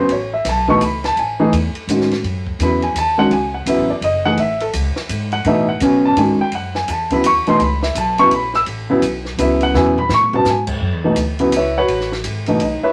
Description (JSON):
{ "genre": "modal jazz", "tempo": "168 BPM", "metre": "3/4", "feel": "swing 63% on 8ths", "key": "F# dorian", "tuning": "A4 = 439 Hz", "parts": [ { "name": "warm upright piano", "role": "accompaniment", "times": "0.0-12.9 s", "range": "B2 to E6", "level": "-17 LUFS", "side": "equal", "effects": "none" }, { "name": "upright bass", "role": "bass", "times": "0.1-12.9 s", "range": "F#1 to B2", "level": "-26 LUFS", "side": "equal", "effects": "none" }, { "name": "compact cocktail drum kit", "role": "drums", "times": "0.1-12.7 s", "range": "crash cymbal, hi-hat, kick drum, ride cymbal, snare drum, toms", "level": "-30 LUFS", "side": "equal", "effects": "none" } ], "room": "moderate studio reverb, RT60 0.6 s", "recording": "none", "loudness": "-17 LUFS", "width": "mono", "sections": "0.0-10.8 A section; 10.8-12.9 A section", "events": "drum fill 9.7-10.5", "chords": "0.0 F#m11; 6.5 A; 10.8 F#m11", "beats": "| 0.10 0.45 0.81 | 1.17 1.53 1.88 | 2.24 2.60 2.96 | 3.31 3.67 4.03 | 4.38 4.74 5.10 | 5.46 5.81 6.17 | 6.53 6.88 7.24 | 7.60 7.96 8.31 | 8.67 9.03 9.38 | 9.74 10.10 10.46 | 10.81 11.17 11.53 | 11.88 12.24 12.60" }